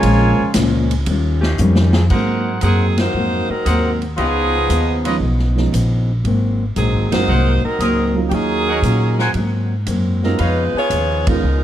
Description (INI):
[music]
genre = jazz, big band swing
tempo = 116 BPM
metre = 4/4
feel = swing 69% on 8ths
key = Ab mixolydian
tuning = A4 = 440 Hz
[part]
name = mellow trumpet section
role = melody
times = 0.0-0.5 s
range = F4 to G#5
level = -20 LUFS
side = equal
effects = none
[part]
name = mellow trombone section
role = second line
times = 0.0-0.5 s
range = C#3 to G#3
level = -20 LUFS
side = right 2 dB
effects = none
[part]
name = fingerpicked steel-string acoustic guitar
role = accompaniment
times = 0.0-11.6 s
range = Ab2 to Gb4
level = -22 LUFS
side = left 2 dB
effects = none
[part]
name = upright bass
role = bass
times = 0.0-11.6 s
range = Gb1 to Bb2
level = -18 LUFS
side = equal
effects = none
[part]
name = swinging big-band drum kit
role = drums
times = 0.0-11.3 s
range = crash cymbal, hi-hat, kick drum, ride cymbal, snare drum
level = -25 LUFS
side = equal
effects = none
[part]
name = clear saxophone section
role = sustained chords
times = 1.4-2.0 s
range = F3 to Ab4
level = -30 LUFS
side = equal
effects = none
[part]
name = dark grand piano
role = accompaniment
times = 2.1-11.4 s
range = F3 to F4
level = -24 LUFS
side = right 6 dB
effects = none
[part]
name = warm trumpet section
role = stabs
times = 2.1-10.6 s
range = F4 to Ab5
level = -24 LUFS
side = equal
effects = none
[part]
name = bright saxophone section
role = melody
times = 2.6-11.6 s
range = F3 to Db5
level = -20 LUFS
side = right 1 dB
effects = none
[sound]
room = light reverb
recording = dark, warm production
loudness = -14 LUFS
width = side -11 dB against mid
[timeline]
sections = 0.0-2.1 A section; 2.1-11.6 B section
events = drum fill 1.6-2.1; band accent 2.9, 7.0, 11.2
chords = 0.0 Bbm7; 1.1 Eb9; 2.1 Ab9; 4.2 Db9; 6.2 Ab9; 8.3 Ebm7; 9.4 Ab9; 10.4 Db9